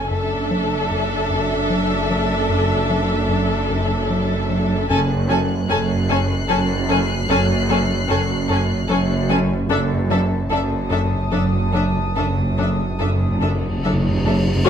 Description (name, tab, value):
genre	cinematic, suspense film score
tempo	75 BPM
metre	3/4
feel	straight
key	unclear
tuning	A4 = 440 Hz
part	rich studio violin section	melody	0.0-14.3 s	E5 to G#5	-28 LUFS	left 1 dB	none
part	rich chamber violin section	second line	0.0-14.3 s	A4	-25 LUFS	left 2 dB	none
part	rich chamber viola section	accompaniment	0.0-14.3 s	C#4 to D4	-26 LUFS	right 1 dB	none
part	rich chamber double bass section	bass	0.0-14.6 s	F#1	-24 LUFS	right 2 dB	none
part	rich symphonic cello section	bass	0.0-14.6 s	F#2	-25 LUFS	right 3 dB	none
part	deep rumbling drone	drone	0.0-14.7 s	F#1	-30 LUFS	equal	built-in reverb
part	rubbery square bass	riff	0.1-14.5 s	F#2 to F#3	-25 LUFS	left 2 dB	none
part	timpani	percussion	4.9-6.1, 9.7-14.6 s	F#2	-25 LUFS	equal	none
part	rich chamber violin section	texture	4.9-14.2 s	A5 to B#6	-29 LUFS	left 4 dB	none
part	cymbal swell	sound effects	13.7-14.7 s	none	-31 LUFS	left 1 dB	none
part	mellow French horn section	sustained chords	14.7 s	F#4	-16 LUFS	left 8 dB	none
room	moderate recital hall reverb, RT60 1.3 s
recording	none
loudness	-17 LUFS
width	side -8 dB against mid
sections	0.0-14.7 A section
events	timpani fill 9.7-14.7; cymbal swell 13.7-14.7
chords	0.1 Dsus2/F#; 4.9 F#5; 9.7 D5/F#